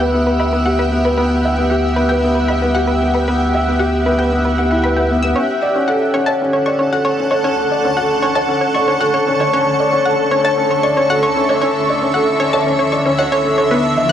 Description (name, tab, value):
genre	piano and strings electronica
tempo	115 BPM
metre	4/4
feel	straight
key	D major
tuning	A4 = 438 Hz
part	granular cloud pad	sustained chords	0.0-14.1 s	D3 to C#6	-18 LUFS	right 1 dB	built-in reverb, cassette tape
part	analog pluck	arpeggios	0.0-14.1 s	B4 to E6	-22 LUFS	left 1 dB	chorus, cassette tape, tape echo, plate reverb
part	felt-muted upright piano	riff	0.0-14.1 s	B3 to E5	-16 LUFS	left 1 dB	cassette tape, tape echo
part	warm sub bass	bass	0.0-5.3 s	D2	-20 LUFS	equal	tube saturation
part	riser	sound effects	14.0-14.1 s	none	-28 LUFS	left 2 dB	none
room	wet studio reverb, RT60 0.7 s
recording	home recording on cassette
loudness	-13 LUFS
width	side -9 dB against mid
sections	0.0-5.4 A section; 5.4-14.1 B section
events	filter sweep on synth arpeggio sound 0.0-5.4; build-up 5.4-14.1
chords	0.0 Emadd9/D; 5.4 Dmaj7